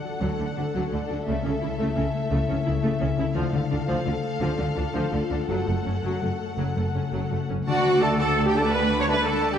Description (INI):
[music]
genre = cinematic, heroic adventure film score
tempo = 113 BPM (dotted quarters)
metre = 12/8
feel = straight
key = unclear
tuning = A4 = 440 Hz
[part]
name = rich studio violin section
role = melody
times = 0.0-9.6 s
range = E5 to C#6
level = -34 LUFS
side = left 3 dB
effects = none
[part]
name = clear symphonic violin section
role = second line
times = 0.0-9.6 s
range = A4 to D6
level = -34 LUFS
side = left 2 dB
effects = none
[part]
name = concert harp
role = arpeggios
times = 0.0-9.6 s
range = F#2 to A5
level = -30 LUFS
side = left 7 dB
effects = none
[part]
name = clear symphonic viola section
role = accompaniment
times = 0.2-9.6 s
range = F3 to C#5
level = -28 LUFS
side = right 1 dB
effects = none
[part]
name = clear symphonic double bass section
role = bass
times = 0.2-9.6 s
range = F#1 to D2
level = -30 LUFS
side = right 2 dB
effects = none
[part]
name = rich symphonic cello section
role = bass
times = 0.2-9.6 s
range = D2 to D3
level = -31 LUFS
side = right 2 dB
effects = none
[part]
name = bright clarinet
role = second line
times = 7.7-9.6 s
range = D4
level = -32 LUFS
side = equal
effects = none
[part]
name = mellow hollow small flute group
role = second line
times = 7.7-9.6 s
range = A5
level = -37 LUFS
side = equal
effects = none
[part]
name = mellow oboe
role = second line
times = 7.7-9.6 s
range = F#4 to C#5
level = -31 LUFS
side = right 1 dB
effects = none
[part]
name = warm French horn section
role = sustained chords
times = 8.0-9.2 s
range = A3 to D4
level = -33 LUFS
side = left 1 dB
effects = none
[part]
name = dark trumpet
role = stabs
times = 8.0-9.2 s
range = A5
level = -32 LUFS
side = right 1 dB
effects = none
[sound]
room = moderate scoring stage reverb, RT60 1.9 s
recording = dark, warm production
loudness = -22 LUFS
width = side -8 dB against mid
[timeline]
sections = 0.0-7.7 A section; 7.7-9.6 B section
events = none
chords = 0.0 D; 1.3 A/C#; 3.4 Dm; 5.5 F#m; 7.7 D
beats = 0.22 0.75 | 1.27 1.80 2.32 2.84 | 3.36 3.89 4.42 4.95 | 5.49 6.05 6.59 7.13 | 7.68 8.21 8.74 9.27